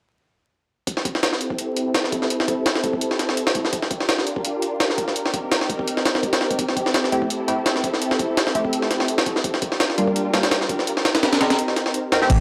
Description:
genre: drum and bass, jungle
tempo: 168 BPM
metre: 4/4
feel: swing 54% on 16ths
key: A phrygian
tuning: A4 = 435 Hz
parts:
  - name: soft string machine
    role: sustained chords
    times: 0.9-12.3 s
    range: C4 to Bb4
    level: -27 LUFS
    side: equal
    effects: ensemble chorus, vintage 12-bit sampler grit
  - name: jungle sampler-style drum kit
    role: drums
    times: 0.9-12.4 s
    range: crash cymbal, hi-hat, kick drum, snare drum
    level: -23 LUFS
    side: equal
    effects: overdrive, high-pass filter on kick, high-pass filter on hats, high-pass filter on snare, high-pass filter on cymbals
  - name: filtered dub chord stab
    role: stabs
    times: 7.1-12.4 s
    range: G3 to Bb4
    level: -27 LUFS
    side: equal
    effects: phaser, analog chorus, dub echo
  - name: saturated sub bass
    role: bass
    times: 12.3-12.4 s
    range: A1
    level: -19 LUFS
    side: equal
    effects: tube saturation
  - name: sub drop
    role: sound effects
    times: 12.3-12.4 s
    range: none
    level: -24 LUFS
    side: equal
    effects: none
room: moderate lush hall reverb, RT60 2.0 s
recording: dry, gritty hardware recording, vinyl crackle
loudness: -22 LUFS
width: mono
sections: 0.9-12.3 A section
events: kick drops out 11.6-12.3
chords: 0.9 Am7; 3.7 Gm7; 5.2 Cm7; 6.6 Am7; 9.4 Gm7; 10.9 Cm7

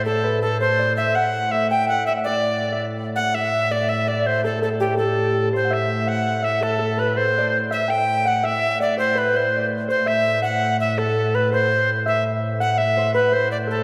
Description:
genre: medieval dance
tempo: 110 BPM (dotted quarters)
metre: 6/8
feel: straight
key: A dorian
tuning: A4 = 440 Hz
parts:
  - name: bright reedy alto recorder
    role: melody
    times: 0.0-13.8 s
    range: G4 to G5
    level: -23 LUFS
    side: equal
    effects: none
  - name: Celtic harp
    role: second line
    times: 0.0-13.8 s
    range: G4 to G5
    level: -27 LUFS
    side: equal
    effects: none
  - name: pipe organ, strings celeste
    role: drone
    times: 0.0-13.8 s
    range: A2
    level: -28 LUFS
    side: equal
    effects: none
room: wet church reverb, RT60 3.1 s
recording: heard from further back in the room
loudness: -21 LUFS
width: mono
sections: 0.0-5.5 A section; 5.5-13.8 B section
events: none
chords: none

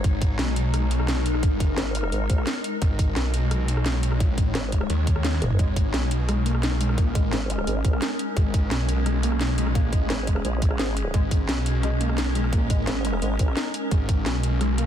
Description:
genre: dark technical drum and bass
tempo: 173 BPM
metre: 4/4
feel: straight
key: G# minor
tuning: A4 = 438 Hz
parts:
  - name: swarming drone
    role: sustained chords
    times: 0.0-14.9 s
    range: G#3 to C#5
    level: -30 LUFS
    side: left 1 dB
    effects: built-in reverb, vintage 12-bit sampler grit, sidechain pumping
  - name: snarling distorted saw bass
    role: bass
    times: 0.0-14.9 s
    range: G#1 to D#2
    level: -24 LUFS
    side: equal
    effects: distortion, tube saturation, sidechain pumping
  - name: vowel-sweep wobble bass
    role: bass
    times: 0.0-2.5, 4.6-8.0, 10.1-13.6 s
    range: F#1 to A#1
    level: -27 LUFS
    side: equal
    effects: chorus
  - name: drum and bass drum kit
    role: drums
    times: 0.0-14.9 s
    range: hi-hat, rim click, snare drum, toms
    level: -30 LUFS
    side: equal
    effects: none
  - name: electronic kick drum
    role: drums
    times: 0.0-14.2 s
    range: none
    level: -22 LUFS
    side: equal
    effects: none
  - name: soft round pluck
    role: arpeggios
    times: 5.6-14.9 s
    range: G#3 to G#4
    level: -31 LUFS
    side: left 2 dB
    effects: lush chorus, sidechain pumping, ping-pong delay
room: little or no reverb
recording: dense, heavily limited modern master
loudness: -21 LUFS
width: side -10 dB against mid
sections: 0.0-14.9 A section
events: drum fill 5.3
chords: 0.0 G#madd9

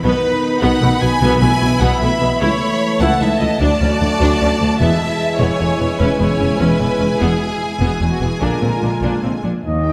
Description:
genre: cinematic, heroic adventure film score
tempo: 100 BPM (dotted quarters)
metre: 12/8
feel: straight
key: unclear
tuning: A4 = 442 Hz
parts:
  - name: warm symphonic violin section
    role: melody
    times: 0.0-9.9 s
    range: G5 to B5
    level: -27 LUFS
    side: equal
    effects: none
  - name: warm symphonic violin section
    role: second line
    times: 0.0-9.9 s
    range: F#4 to G#5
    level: -23 LUFS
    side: equal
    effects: none
  - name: rich symphonic viola section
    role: accompaniment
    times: 0.0-9.9 s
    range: A3 to F#4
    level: -24 LUFS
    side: equal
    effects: none
  - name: warm trombone section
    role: sustained chords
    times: 0.0-9.9 s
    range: B2 to B3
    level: -24 LUFS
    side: equal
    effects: none
  - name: rich studio cello section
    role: bass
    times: 0.0-9.9 s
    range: C#2 to B2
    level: -23 LUFS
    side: equal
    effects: none
  - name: warm symphonic double bass section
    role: bass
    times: 0.0-9.9 s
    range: E1 to Eb2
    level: -23 LUFS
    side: equal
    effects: none
  - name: timpani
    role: percussion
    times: 1.2-1.8 s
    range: B2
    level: -25 LUFS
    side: equal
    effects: none
  - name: mellow French horn section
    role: sustained chords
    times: 9.6-9.9 s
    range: Bb3 to Eb4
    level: -26 LUFS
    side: equal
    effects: none
  - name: clear trumpet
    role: stabs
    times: 9.6-9.9 s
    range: Eb5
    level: -24 LUFS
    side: equal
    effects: none
room: wet scoring stage reverb, RT60 1.8 s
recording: none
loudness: -16 LUFS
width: mono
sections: 0.0-9.6 A section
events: none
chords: 0.0 B; 1.2 E/B; 2.4 A; 3.6 D; 4.8 E; 6.0 C#m7/E; 7.2 E; 8.4 A#7

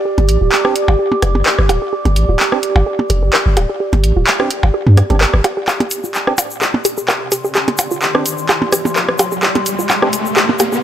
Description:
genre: minimal techno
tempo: 128 BPM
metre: 4/4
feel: swing 54% on 16ths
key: unclear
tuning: A4 = 442 Hz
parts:
  - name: warbly tape-like pad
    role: texture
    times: 0.0-10.8 s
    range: G4 to D6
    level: -20 LUFS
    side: right 1 dB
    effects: chorus, built-in reverb
  - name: hollow square pluck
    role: riff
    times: 0.1-10.7 s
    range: F4 to Bb4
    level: -21 LUFS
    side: right 1 dB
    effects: chorus, phaser, dub echo
  - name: punchy sub bass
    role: bass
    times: 0.2-5.4 s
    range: D1 to G2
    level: -12 LUFS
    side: equal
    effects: none
  - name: punchy analog drum machine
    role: drums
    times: 0.2-10.7 s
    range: handclaps, hi-hat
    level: -17 LUFS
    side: equal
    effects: overdrive
  - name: electronic percussion blips and rim click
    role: percussion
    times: 0.2-10.7 s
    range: none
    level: -20 LUFS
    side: right 1 dB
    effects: tape echo
  - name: percussive organ stab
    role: stabs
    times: 0.6-10.1 s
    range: C4 to G4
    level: -23 LUFS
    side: right 3 dB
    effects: chorus, tape echo
  - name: egg shaker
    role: percussion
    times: 5.7-10.8 s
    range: none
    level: -24 LUFS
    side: left 3 dB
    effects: none
  - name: riser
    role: sound effects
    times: 7.3-10.8 s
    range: none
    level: -23 LUFS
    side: equal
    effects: none
room: light reverb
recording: none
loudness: -12 LUFS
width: side -10 dB against mid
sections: 0.0-5.7 A section; 5.7-10.8 B section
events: build-up 5.7-10.8; drum fill 5.7-10.8; riser 7.3-10.8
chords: 0.0 G5; 5.7 Gsus4

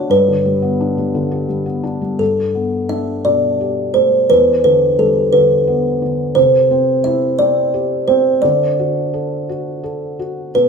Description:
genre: children's music, lullaby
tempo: 58 BPM (dotted quarters)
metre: 6/8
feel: rubato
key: G major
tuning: A4 = 438 Hz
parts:
  - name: kalimba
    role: melody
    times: 0.0-10.7 s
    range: A4 to E5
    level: -14 LUFS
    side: right 1 dB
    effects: none
  - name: felt-muted upright piano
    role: accompaniment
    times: 0.0-10.7 s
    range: E2 to A4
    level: -20 LUFS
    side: left 2 dB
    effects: none
room: wet recital hall reverb, RT60 1.5 s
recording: minimal, uncompressed stereo recording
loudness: -13 LUFS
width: side -6 dB against mid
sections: 0.0-2.2 A section; 2.2-10.7 B section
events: none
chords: 0.1 G; 2.2 Gadd9; 4.3 Em7; 6.4 Cadd9; 8.4 D

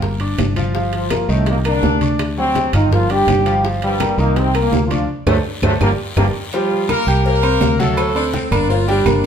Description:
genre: latin, salsa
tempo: 166 BPM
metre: 4/4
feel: straight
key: G minor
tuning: A4 = 440 Hz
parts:
  - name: clear concert grand piano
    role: accompaniment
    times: 0.0-9.3 s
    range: Eb3 to G6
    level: -21 LUFS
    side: equal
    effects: none
  - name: fingered electric bass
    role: bass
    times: 0.0-9.3 s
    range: G1 to D2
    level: -19 LUFS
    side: equal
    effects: none
  - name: bongos and cowbell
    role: percussion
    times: 0.0-9.2 s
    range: none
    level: -28 LUFS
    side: left 5 dB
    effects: none
  - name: congas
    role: percussion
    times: 0.0-9.3 s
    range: none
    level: -23 LUFS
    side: equal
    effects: none
  - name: guiro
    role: percussion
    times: 0.0-9.2 s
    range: none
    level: -34 LUFS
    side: left 4 dB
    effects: none
  - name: timbales and agogo bells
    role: percussion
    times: 0.2-9.2 s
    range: none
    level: -25 LUFS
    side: right 5 dB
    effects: none
  - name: claves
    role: percussion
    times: 0.4-9.2 s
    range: none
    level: -33 LUFS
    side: right 2 dB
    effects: none
  - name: bright trombone section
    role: melody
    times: 0.9-6.3 s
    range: G2 to G4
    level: -19 LUFS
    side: right 1 dB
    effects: none
  - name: clear horn section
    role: melody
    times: 6.5-8.5 s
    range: F3 to Bb4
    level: -19 LUFS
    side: left 1 dB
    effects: none
  - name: bright saxophone section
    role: second line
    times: 8.2-9.3 s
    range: C4 to F4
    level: -22 LUFS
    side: right 1 dB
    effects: none
room: wet studio reverb, RT60 0.9 s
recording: heard from further back in the room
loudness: -14 LUFS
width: side -8 dB against mid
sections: 0.0-6.5 A section; 6.5-9.3 B section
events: band accent 5.1-6.5; drum fill 5.4-6.5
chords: 0.0 Gm7; 1.5 Cm7; 2.2 D7; 2.9 Gm7; 4.4 Cm7; 5.1 D7; 5.8 Gm7; 7.3 C5; 8.0 D7; 8.7 Gm7

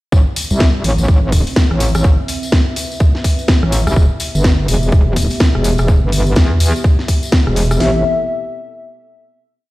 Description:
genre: bass house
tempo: 125 BPM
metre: 4/4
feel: swing 61% on 16ths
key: A minor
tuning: A4 = 440 Hz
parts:
  - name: dark analog pad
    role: sustained chords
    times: 0.3-8.0 s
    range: B3 to E5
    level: -23 LUFS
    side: left 1 dB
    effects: chorus, sidechain pumping
  - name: metallic wobble bass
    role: bass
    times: 0.1-8.0 s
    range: E1 to E2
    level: -14 LUFS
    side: equal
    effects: chorus, tube saturation, sidechain pumping
  - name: garage drum kit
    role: drums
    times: 0.1-7.9 s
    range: hi-hat, kick drum, snare drum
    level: -12 LUFS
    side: equal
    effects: none
  - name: tambourine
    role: percussion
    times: 0.1-7.8 s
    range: none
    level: -27 LUFS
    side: left 2 dB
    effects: none
  - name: garage drum kit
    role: drums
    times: 0.4-7.8 s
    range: hi-hat, rim click, snare drum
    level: -20 LUFS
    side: equal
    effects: none
room: light reverb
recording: played on a big sound system in a bare room, stone room reverb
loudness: -12 LUFS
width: side -18 dB against mid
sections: 0.1-7.8 drop; 7.8-9.7 final chord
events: drop 0.1-7.8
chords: 0.1 Am; 4.0 Em; 7.8 Am

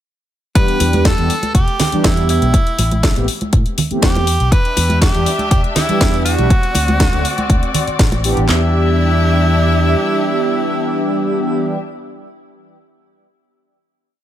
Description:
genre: nu-disco, nu disco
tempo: 121 BPM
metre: 4/4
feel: straight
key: E minor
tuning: A4 = 440 Hz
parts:
  - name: mellow synth brass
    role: accompaniment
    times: 0.5-11.8 s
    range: D3 to G4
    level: -19 LUFS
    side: right 1 dB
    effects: chorus
  - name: edgy tenor saxophone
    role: melody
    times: 0.6-11.8 s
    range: E4 to B4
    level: -21 LUFS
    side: right 1 dB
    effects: ping-pong delay
  - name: house drum kit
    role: drums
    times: 0.6-8.6 s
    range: handclaps, kick drum, snare drum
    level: -14 LUFS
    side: equal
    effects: none
  - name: house drum kit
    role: drums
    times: 0.6-8.5 s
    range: hi-hat, snare drum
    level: -21 LUFS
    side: left 1 dB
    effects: none
  - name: fingered electric bass with an envelope filter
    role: bass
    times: 0.8-9.9 s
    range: E1 to A2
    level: -16 LUFS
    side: equal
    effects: none
  - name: congas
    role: percussion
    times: 0.8-8.2 s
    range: none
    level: -23 LUFS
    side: right 2 dB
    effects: none
  - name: muted studio string section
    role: sustained chords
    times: 4.5-11.8 s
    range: C4 to E5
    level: -23 LUFS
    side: left 2 dB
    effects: sidechain pumping
room: digital ambience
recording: none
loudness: -12 LUFS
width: side -11 dB against mid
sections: 0.6-8.5 drop; 8.5-12.5 final chord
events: drop 0.6-8.5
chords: 0.6 Em7; 2.5 Am9; 4.3 Em7; 6.5 D7; 8.5 Em7

